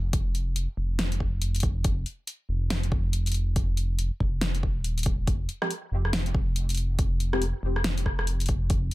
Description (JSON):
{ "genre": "deep dubstep", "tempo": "140 BPM", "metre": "4/4", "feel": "swing 61% on 16ths, half-time", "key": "F minor", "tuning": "A4 = 439 Hz", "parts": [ { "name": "dark detuned saw bass", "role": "bass", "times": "0.0-8.9 s", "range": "Eb1 to F1", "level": "-27 LUFS", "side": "equal", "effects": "none" }, { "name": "deep house drum kit", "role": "drums", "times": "0.1-8.9 s", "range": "hi-hat, rim click, snare drum", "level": "-31 LUFS", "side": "left 1 dB", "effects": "none" }, { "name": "electronic kick drum", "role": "drums", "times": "0.1-8.8 s", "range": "none", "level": "-27 LUFS", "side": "equal", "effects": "none" }, { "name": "filtered dub chord stab", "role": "stabs", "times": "5.6-7.4 s", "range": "F3 to G4", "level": "-33 LUFS", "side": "left 2 dB", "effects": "phaser, dub echo" } ], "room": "little or no reverb", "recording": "none", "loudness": "-25 LUFS", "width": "side -18 dB against mid", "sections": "0.0-8.9 A section", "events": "none", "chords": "none" }